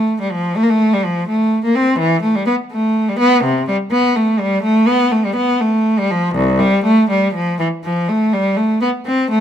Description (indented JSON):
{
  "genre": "classical, baroque-style suite movement for unaccompanied cello",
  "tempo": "82 BPM (dotted quarters)",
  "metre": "12/8",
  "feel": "rubato",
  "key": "unclear",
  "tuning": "A4 = 440 Hz",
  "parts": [
    { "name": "rich cello", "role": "solo", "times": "0.0-9.4 s", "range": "C2 to C4", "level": "-13 LUFS", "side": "equal", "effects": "none" }
  ],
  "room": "moderate stone room reverb, RT60 1.0 s",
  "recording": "minimal, uncompressed stereo recording",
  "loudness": "-13 LUFS",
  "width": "side -9 dB against mid",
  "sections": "0.0-9.4 A section",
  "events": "none",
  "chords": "none",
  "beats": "0.56 1.28 | 1.99 2.72 3.44 4.16 | 4.89 5.62 6.36 7.10 | 7.84 8.57 9.32"
}